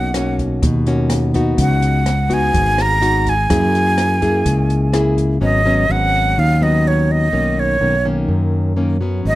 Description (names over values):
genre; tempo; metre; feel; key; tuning
bossa nova; 125 BPM; 4/4; straight; unclear; A4 = 440 Hz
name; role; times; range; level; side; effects
breathy jazz flute; melody; 0.0-9.4 s; C#5 to A#5; -18 LUFS; right 1 dB; none
nylon-string guitar; accompaniment; 0.0-9.4 s; F#2 to G#4; -18 LUFS; left 1 dB; none
fingered electric bass; bass; 0.0-9.4 s; G#1 to F#2; -18 LUFS; equal; none
open jazz drum kit; drums; 0.1-5.3 s; hi-hat, kick drum, rim click; -23 LUFS; equal; none
room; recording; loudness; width
little or no reverb; close, detailed microphones; -14 LUFS; side -16 dB against mid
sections
0.0-5.4 A section; 5.4-9.4 B section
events
none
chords
0.0 Bmaj9; 1.6 C#9sus4; 3.5 F#9; 5.4 Abm7; 7.3 Bmaj9